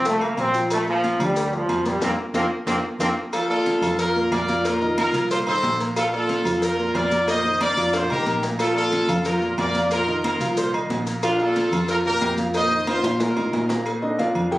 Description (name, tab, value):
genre	latin, salsa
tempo	182 BPM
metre	4/4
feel	straight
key	Bb major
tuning	A4 = 440 Hz
part	bright trombone section	melody	0.0-3.1 s	F3 to C4	-22 LUFS	equal	none
part	clear concert grand piano	accompaniment	0.0-14.6 s	Bb2 to Bb5	-27 LUFS	right 1 dB	none
part	vintage muted fingered electric bass	bass	0.0-14.6 s	Bb1 to Bb2	-30 LUFS	equal	none
part	congas	percussion	0.1-14.6 s	none	-31 LUFS	equal	none
part	cowbell and bongos	percussion	0.1-14.6 s	none	-31 LUFS	left 2 dB	none
part	maracas	percussion	0.1-13.9 s	none	-39 LUFS	left 1 dB	none
part	agogo bells and timbales	percussion	0.2-14.5 s	none	-30 LUFS	right 1 dB	none
part	bright horn section	melody	3.3-13.7 s	D4 to Eb5	-22 LUFS	equal	none
room	wet large studio reverb, RT60 0.9 s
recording	recorded on a phone in the room, studio reverb, compression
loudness	-19 LUFS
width	side -16 dB against mid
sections	0.0-3.3 A section; 3.3-13.9 B section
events	drum fill 2.0-3.3, 7.9-8.6, 12.9-13.9; band accent 2.0-3.3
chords	0.0 Fsus4; 0.7 Bb; 2.0 F7sus4; 3.3 Bbmaj7; 4.6 F7sus4; 6.0 Bbmaj7; 7.3 F7sus4; 8.6 Bbmaj7; 9.9 F7sus4; 11.2 Bbmaj7; 12.6 F7sus4; 13.9 Bbmaj7